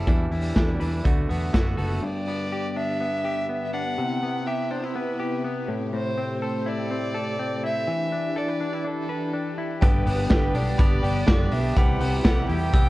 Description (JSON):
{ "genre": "jangly indie pop", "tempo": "123 BPM", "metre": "4/4", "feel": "straight", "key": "G major", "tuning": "A4 = 439 Hz", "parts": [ { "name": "direct-recorded clean electric guitar", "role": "accompaniment", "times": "0.0-2.0, 9.8-12.9 s", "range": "E2 to G4", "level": "-30 LUFS", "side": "right 3 dB", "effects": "none" }, { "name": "direct-recorded clean electric guitar", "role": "arpeggios", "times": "0.0-12.9 s", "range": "G2 to B4", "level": "-30 LUFS", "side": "left 2 dB", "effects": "none" }, { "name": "vintage muted fingered electric bass", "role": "bass", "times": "0.0-2.0, 9.8-12.9 s", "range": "F#1 to F#2", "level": "-26 LUFS", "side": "equal", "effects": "none" }, { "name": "raw garage drum kit", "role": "drums", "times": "0.1-1.9, 9.8-12.9 s", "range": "hi-hat, kick drum, snare drum", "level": "-22 LUFS", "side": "equal", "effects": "none" }, { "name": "warm violin", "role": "melody", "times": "2.0-12.9 s", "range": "A4 to G5", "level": "-30 LUFS", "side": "right 1 dB", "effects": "none" }, { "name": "string machine, violins", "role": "sustained chords", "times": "2.0-12.9 s", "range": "C3 to G4", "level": "-33 LUFS", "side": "equal", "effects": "ensemble chorus" }, { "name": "glockenspiel with hard plastic mallets", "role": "second line", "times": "9.8-12.9 s", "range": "G5 to E6", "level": "-34 LUFS", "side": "left 3 dB", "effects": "none" } ], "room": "light reverb, studio reverb", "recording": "worn, warbling old tape, cassette tape, warbly pitch drift", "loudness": "-22 LUFS", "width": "side -17 dB against mid", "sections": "0.0-2.0 A section; 2.0-12.9 B section", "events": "none", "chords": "0.1 Em7; 1.1 D6; 2.0 G; 4.0 Cmaj7; 5.7 Am7; 7.9 Em7; 9.8 G; 11.8 Cmaj7", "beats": "| 0.07 0.57 1.06 1.55 | 2.04 2.52 3.01 3.50 | 3.99 4.47 4.96 5.45 | 5.93 6.42 6.91 7.39 | 7.88 8.37 8.85 9.34 | 9.82 10.31 10.79 11.28 | 11.77 12.25 12.74" }